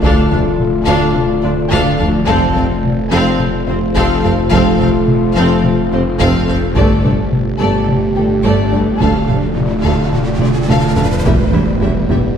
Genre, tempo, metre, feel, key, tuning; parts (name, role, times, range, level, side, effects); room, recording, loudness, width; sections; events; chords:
cinematic, hybrid orchestral and electronic film score; 107 BPM; 4/4; straight; D dorian; A4 = 438 Hz
rich chamber violin section; melody; 0.0-12.2 s; A4 to F5; -24 LUFS; left 3 dB
dark symphonic violin section; second line; 0.0-12.2 s; E4 to A4; -23 LUFS; left 2 dB
rich symphonic viola section; accompaniment; 0.0-12.2 s; G3 to D4; -21 LUFS; equal
ethereal airy pad; sustained chords; 0.0-12.4 s; A3 to D5; -22 LUFS; right 3 dB; ensemble chorus, built-in reverb
mellow French horn section; sustained chords; 0.0-12.4 s; A3 to G4; -20 LUFS; left 4 dB
soft round pluck; arpeggios; 0.0-12.3 s; D3 to G4; -23 LUFS; left 2 dB
mellow tuba; bass; 0.0-12.2 s; E1 to D2; -22 LUFS; right 3 dB
rich symphonic cello section; bass; 0.0-12.2 s; D2 to G2; -22 LUFS; right 2 dB
rich symphonic double bass section; bass; 0.0-12.2 s; E1 to D2; -22 LUFS; right 2 dB
snarling distorted saw bass; bass; 0.0-12.4 s; D1 to G1; -23 LUFS; equal; distortion
taiko ensemble; drums; 0.0-12.4 s; -19 LUFS; equal
riser and impact; sound effects; 8.4-12.4 s; -24 LUFS; equal
wet concert hall reverb, RT60 1.9 s; heard from further back in the room; -11 LUFS; side -8 dB against mid
0.0-11.2 A section; 11.2-12.4 B section
riser 8.4-11.2; drum fill 10.4-11.2; impact 11.2-12.4
0.0 Dm; 2.3 F; 6.8 Gsus2; 9.0 Dm; 11.2 Em